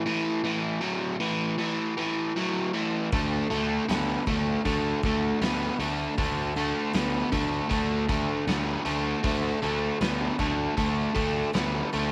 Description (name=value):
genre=blues rock power trio and southern rock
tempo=78 BPM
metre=4/4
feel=straight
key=unclear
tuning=A4 = 439 Hz
part: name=biting overdriven guitar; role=riff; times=0.0-12.1 s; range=A2 to B3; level=-29 LUFS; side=equal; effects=none
part: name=fuzz fingered electric bass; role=bass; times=3.1-12.1 s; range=D2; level=-33 LUFS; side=equal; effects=overdrive
part: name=big rock drum kit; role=drums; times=3.1-12.1 s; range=hi-hat, kick drum, snare drum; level=-35 LUFS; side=equal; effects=none
room=light reverb, studio reverb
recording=tape saturation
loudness=-27 LUFS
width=mono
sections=0.0-12.1 A section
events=none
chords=0.0 A5; 3.1 D5